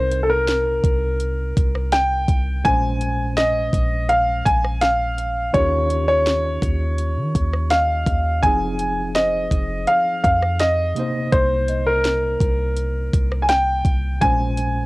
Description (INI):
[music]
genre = contemporary R&B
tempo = 83 BPM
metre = 4/4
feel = straight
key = unclear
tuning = A4 = 441 Hz
[part]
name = warm grand piano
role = melody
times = 0.0-14.9 s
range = A4 to Ab5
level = -20 LUFS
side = equal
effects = none
[part]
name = tine electric piano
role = accompaniment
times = 0.0-14.9 s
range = Bb2 to Db5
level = -28 LUFS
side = equal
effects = overdrive, fast stereo tremolo, cassette tape
[part]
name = warm 808-style bass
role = bass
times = 0.0-14.9 s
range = F1 to Eb3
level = -23 LUFS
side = equal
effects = none
[part]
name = trap drum kit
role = drums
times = 0.1-14.7 s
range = hi-hat, kick drum, rim click, snare drum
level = -22 LUFS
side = equal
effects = cassette tape
[part]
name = worn celesta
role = texture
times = 5.9-13.4 s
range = G4 to Eb5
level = -38 LUFS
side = left 6 dB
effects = none
[sound]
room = little or no reverb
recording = home recording on cassette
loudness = -17 LUFS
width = side -21 dB against mid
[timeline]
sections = 0.0-14.9 A section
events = none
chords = 0.0 Cm7; 2.6 Bbm9; 5.5 Eb9; 8.4 Fm7; 11.0 Cm7; 14.2 Bbm9